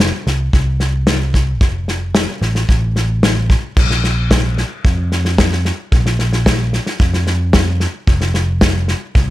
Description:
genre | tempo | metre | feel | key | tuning
indie folk with a building arrangement | 112 BPM | 4/4 | straight | unclear | A4 = 445 Hz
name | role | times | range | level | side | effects
picked electric bass | bass | 0.0-9.3 s | F1 to F2 | -16 LUFS | equal | none
loose indie drum kit | drums | 0.0-9.3 s | crash cymbal, kick drum, snare drum | -14 LUFS | equal | none
room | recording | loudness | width
light reverb | none | -13 LUFS | side -16 dB against mid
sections
0.0-3.8 A section; 3.8-9.3 B section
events
none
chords
none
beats
0.00 0.54 1.08 | 1.61 2.15 2.69 3.23 | 3.77 4.31 4.84 5.38 | 5.92 6.46 7.00 7.54 | 8.07 8.61 9.15

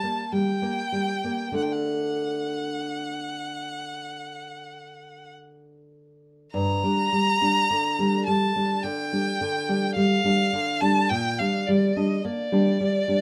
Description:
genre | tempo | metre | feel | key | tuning
romantic duo for violin and classical guitar | 46-54 BPM | 4/4 | rubato | G minor | A4 = 442 Hz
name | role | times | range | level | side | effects
rich violin | melody | 0.0-13.2 s | D5 to Bb5 | -29 LUFS | equal | none
nylon-string guitar | accompaniment | 0.0-13.2 s | G2 to D4 | -27 LUFS | equal | none
room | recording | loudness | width
light reverb | lossy compression artefacts | -25 LUFS | mono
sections
0.0-6.5 A section; 6.5-13.2 B section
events
none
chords
0.0 Eb (rootless); 1.6 D; 6.5 Gm; 11.1 Gm/Bb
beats
0.32 | 1.56 2.84 4.09 5.31 | 6.53 7.69 8.83 9.96 | 11.10 12.24

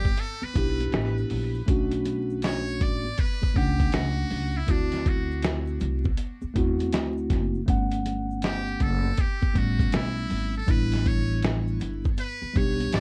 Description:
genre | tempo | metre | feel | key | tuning
hip hop, jazz-hop | 80 BPM | 4/4 | swing 65% on 16ths | unclear | A4 = 440 Hz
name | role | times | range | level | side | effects
trumpet with metal mute | melody | 0.0-13.0 s | D4 to D5 | -37 LUFS | equal | tape echo
mellow tine electric piano | accompaniment | 0.0-13.0 s | G3 to F#5 | -32 LUFS | equal | none
upright bass | bass | 0.0-13.0 s | F#1 to E2 | -31 LUFS | equal | none
congas and tube shaker | percussion | 0.0-13.0 s | none | -43 LUFS | equal | none
dusty soul sampler-style drum kit | drums | 0.1-13.0 s | hi-hat, kick drum, snare drum | -28 LUFS | equal | none
room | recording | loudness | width
light reverb | worn, warbling old tape, cassette tape, vinyl crackle, warbly pitch drift | -26 LUFS | mono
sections
0.0-13.0 A section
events
muted trumpet solo 0.0-13.0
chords
0.0 A9sus4; 1.7 Bm9; 4.7 D7; 7.7 Gmaj9#11; 10.7 A9sus4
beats
0.18 0.93 | 1.68 2.43 3.18 3.93 | 4.68 5.43 6.18 6.93 | 7.68 8.43 9.18 9.93 | 10.68 11.43 12.18 12.93

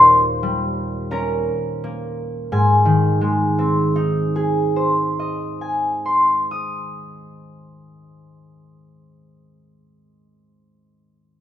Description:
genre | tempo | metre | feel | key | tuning
classical, solo harp piece | 46 BPM | 4/4 | rubato | Ab major | A4 = 440 Hz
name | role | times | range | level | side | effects
concert harp | solo | 0.0-9.2 s | Eb2 to Eb6 | -16 LUFS | equal | none
room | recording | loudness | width
wet recital hall reverb, RT60 1.8 s | minimal, uncompressed stereo recording | -17 LUFS | side -10 dB against mid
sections
0.0-2.5 A section; 2.5-7.8 B section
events
slowing down 0.0-2.5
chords
0.0 Eb7; 2.5 Ab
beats
1.11 | 2.53 3.83 5.16 6.45

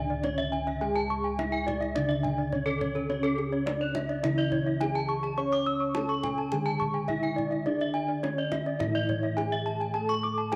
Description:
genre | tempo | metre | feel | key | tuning
Balinese gamelan | 105 BPM | 4/4 | straight | C# pelog | A4 = 440 Hz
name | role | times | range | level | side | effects
gamelan-type bronze metallophone | melody | 0.0-10.6 s | C#4 to C#5 | -35 LUFS | equal | none
gamelan-type bronze metallophone | accompaniment | 0.0-10.6 s | C#3 to C#4 | -39 LUFS | equal | none
gamelan-type bronze metallophone | arpeggios | 0.0-10.6 s | G#4-30c to E6-30c | -34 LUFS | equal | none
gamelan-type bossed gongs | bass | 0.0-10.6 s | C#2 to C#5 | -36 LUFS | equal | none
kendang | percussion | 0.2-10.6 s | none | -43 LUFS | equal | none
gamelan-type bronze metallophone | arpeggios | 0.4-10.2 s | A4-20c to D6+20c | -38 LUFS | equal | none
room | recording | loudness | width
moderate echo chamber reverb, RT60 2.1 s | none | -29 LUFS | mono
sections
0.0-10.6 A section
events
none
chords
none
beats
0.23 | 0.80 1.38 1.95 2.52 | 3.09 3.66 4.23 4.80 | 5.38 5.95 6.52 7.09 | 7.66 8.23 8.80 9.38 | 9.95 10.52

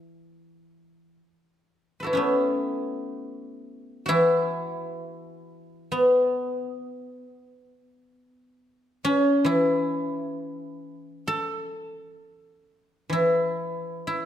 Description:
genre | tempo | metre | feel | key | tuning
chinese traditional, Chinese solo plucked strings | 66 BPM | 4/4 | uneven beats, rubato | E zhi mode | A4 = 445 Hz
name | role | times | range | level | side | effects
guzheng | solo | 0.0-14.3 s | E3 to E5 | -23 LUFS | equal | none
room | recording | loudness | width
light reverb | none | -23 LUFS | side -10 dB against mid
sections
0.0-2.2 A section; 2.2-14.3 B section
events
none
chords
none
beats
0.22 1.19 | 2.17 3.15 4.11 5.03 | 5.92 6.81 7.72 8.61 | 9.49 10.37 11.27 12.20 | 13.13 14.07

